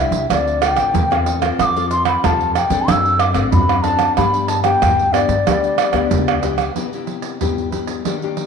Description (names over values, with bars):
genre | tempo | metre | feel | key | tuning
samba and choro | 93 BPM | 4/4 | straight | C major | A4 = 440 Hz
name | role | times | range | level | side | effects
mellow bansuri | melody | 0.0-6.4 s | D5 to E6 | -18 LUFS | left 1 dB | none
nylon-string guitar | accompaniment | 0.0-8.5 s | G2 to A4 | -22 LUFS | left 9 dB | none
upright bass | bass | 0.0-6.7 s | A1 to G2 | -22 LUFS | left 1 dB | none
egg shaker, pandeiro, surdo and tamborim | percussion | 0.1-8.5 s | none | -19 LUFS | right 7 dB | none
room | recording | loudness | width
wet echo chamber reverb, RT60 1.6 s, small room ambience | 1960s-style stereo with parts hard left and right | -14 LUFS | side -6 dB against mid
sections
0.0-6.8 A section; 6.8-8.5 B section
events
none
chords
0.3 Dm7; 1.6 F; 2.9 D7; 4.2 G; 6.8 Cmaj7